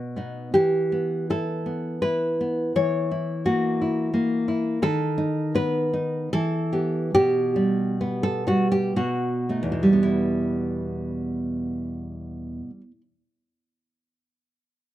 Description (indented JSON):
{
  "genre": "romantic piece for solo classical guitar",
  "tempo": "55-89 BPM",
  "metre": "3/4",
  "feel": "rubato",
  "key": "E minor",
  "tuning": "A4 = 438 Hz",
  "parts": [
    { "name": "nylon-string guitar", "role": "solo", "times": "0.0-13.0 s", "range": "E2 to C#5", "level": "-22 LUFS", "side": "equal", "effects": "none" }
  ],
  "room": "light reverb",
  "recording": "none",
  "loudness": "-22 LUFS",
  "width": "side -14 dB against mid",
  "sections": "0.0-10.0 A section; 10.0-14.9 B section",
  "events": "slowing down 3.8-10.0",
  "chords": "0.0 B; 0.5 Em; 2.8 F#7/E; 4.8 B/D#; 6.3 Em; 7.1 Gmaj9/B; 9.0 B7; 10.0 Em"
}